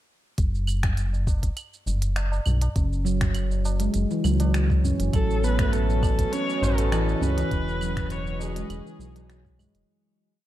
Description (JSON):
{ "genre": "organic downtempo", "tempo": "101 BPM", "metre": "4/4", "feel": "swing 53% on 16ths", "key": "F# dorian", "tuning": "A4 = 439 Hz", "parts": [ { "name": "round analog bass", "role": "bass", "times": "0.4-9.8 s", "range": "E1 to C#2", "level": "-24 LUFS", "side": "equal", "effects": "sidechain pumping" }, { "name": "electronic kick drum", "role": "drums", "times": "0.4-9.6 s", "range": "none", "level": "-25 LUFS", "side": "equal", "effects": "none" }, { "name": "organic electronic drum kit", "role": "drums", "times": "0.4-9.9 s", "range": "claves, finger snaps, hi-hat, shaker", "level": "-35 LUFS", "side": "right 2 dB", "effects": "none" }, { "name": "tabla", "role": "percussion", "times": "0.8-9.7 s", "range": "none", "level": "-34 LUFS", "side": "equal", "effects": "none" }, { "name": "handpan", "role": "arpeggios", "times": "2.8-9.7 s", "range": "C#3 to C#4", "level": "-28 LUFS", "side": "right 2 dB", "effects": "digital delay" }, { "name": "rich kamancheh", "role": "melody", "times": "5.1-9.6 s", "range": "G#4 to C#5", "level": "-30 LUFS", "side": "left 1 dB", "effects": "tape echo" }, { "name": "dark studio string section", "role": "sustained chords", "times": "5.1-9.9 s", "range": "C#4 to D#5", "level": "-35 LUFS", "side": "left 1 dB", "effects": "sidechain pumping" } ], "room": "light reverb, small room ambience", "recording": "dark, warm production", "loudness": "-22 LUFS", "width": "side -14 dB against mid", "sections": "0.4-9.9 groove", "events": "fade-out 6.7-9.9", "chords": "0.4 F#5; 5.1 A; 7.5 E6", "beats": "| 0.38 0.97 1.57 2.16 | 2.76 3.35 3.95 4.54 | 5.13 5.73 6.32 6.92 | 7.51 8.10 8.70 9.29" }